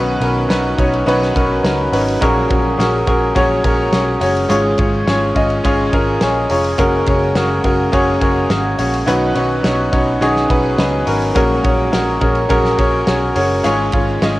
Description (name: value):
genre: piano-driven pop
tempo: 105 BPM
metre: 4/4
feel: straight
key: F# major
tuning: A4 = 439 Hz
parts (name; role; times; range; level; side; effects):
- clear concert grand piano; accompaniment; 0.0-14.4 s; G#2 to A#5; -15 LUFS; left 1 dB; cassette tape
- direct-recorded clean electric guitar; riff; 0.0-14.4 s; F#2 to A#4; -24 LUFS; right 4 dB; cassette tape
- vintage muted picked electric bass; bass; 0.0-14.4 s; E#1 to C#2; -21 LUFS; equal; none
- loose indie drum kit; drums; 0.2-14.4 s; hi-hat, kick drum, ride cymbal, snare drum; -20 LUFS; equal; cassette tape
room: moderate spring reverb, RT60 2.4 s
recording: home recording on cassette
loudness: -13 LUFS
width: side -17 dB against mid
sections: 0.0-14.4 A section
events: grand piano fill 5.6-6.8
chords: 0.0 Badd9; 2.2 F#add9/A#; 4.5 C#/G#; 6.8 F#add9; 9.1 Badd9; 11.4 F#add9/A#; 13.7 C#/G#